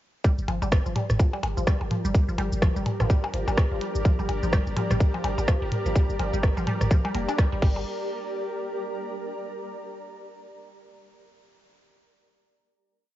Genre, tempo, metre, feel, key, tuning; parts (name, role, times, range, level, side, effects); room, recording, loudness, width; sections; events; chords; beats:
minimal techno; 126 BPM; 4/4; swing 59% on 16ths; G minor; A4 = 440 Hz
resonant blip pluck; riff; 0.2-7.8 s; F3 to D4; -32 LUFS; equal; phaser, sidechain pumping, cassette tape, analog delay
electronic kick drum; drums; 0.2-7.7 s; -21 LUFS; equal
minimal click drum kit; drums; 0.2-7.7 s; cabasa, crash cymbal, hi-hat, rim click; -32 LUFS; equal
granular cloud pad; texture; 1.3-9.7 s; G4 to Bb5; -33 LUFS; equal; built-in reverb, sidechain pumping, cassette tape
punchy sub bass; bass; 0.4-7.8 s; F1 to G1; -29 LUFS; equal; sidechain pumping
electronic percussion blips and toms; percussion; 0.5-7.8 s; -30 LUFS; equal; overdrive
little or no reverb; home recording on cassette, nothing above 7.6 kHz; -23 LUFS; side -14 dB against mid
0.2-7.9 drop; 7.9-9.8 final chord
drop 0.2-7.9
0.2 Gm
| 0.24 0.72 1.19 1.67 | 2.15 2.62 3.10 3.58 | 4.05 4.53 5.00 5.48 | 5.96 6.43 6.91 7.38 | 7.86 8.34 8.81 9.29